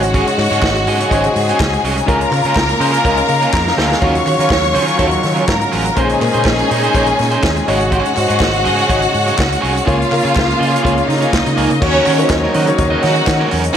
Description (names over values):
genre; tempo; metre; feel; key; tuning
disco; 123 BPM; 4/4; straight; Eb minor; A4 = 441 Hz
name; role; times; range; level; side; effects
clear studio string section; second line; 0.0-13.5 s; Db4 to Db6; -17 LUFS; equal; none
clear grand piano; accompaniment; 0.0-13.8 s; Bb2 to Db5; -19 LUFS; left 3 dB; none
electric guitar at the edge of break-up; accompaniment; 0.0-13.8 s; Gb3 to Eb5; -21 LUFS; right 4 dB; spring reverb
clear studio string section; sustained chords; 0.0-13.8 s; Db3 to F5; -21 LUFS; left 1 dB; none
fingered electric bass; bass; 0.0-13.7 s; Ab1 to Eb3; -20 LUFS; equal; none
vintage drum kit; drums; 0.0-13.8 s; crash cymbal, hi-hat, kick drum, snare drum, splash cymbal; -20 LUFS; right 1 dB; none
group handclap; percussion; 0.4-13.4 s; none; -28 LUFS; left 2 dB; none
room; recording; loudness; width
light reverb; none; -12 LUFS; side -9 dB against mid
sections
0.0-11.8 A section; 11.8-13.8 B section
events
drum fill 3.5-4.0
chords
0.0 Ab7sus4; 2.1 Db6; 4.0 Ebm9; 6.0 Bbm11; 7.7 Ab7sus4; 9.9 Db6; 11.8 Ebm7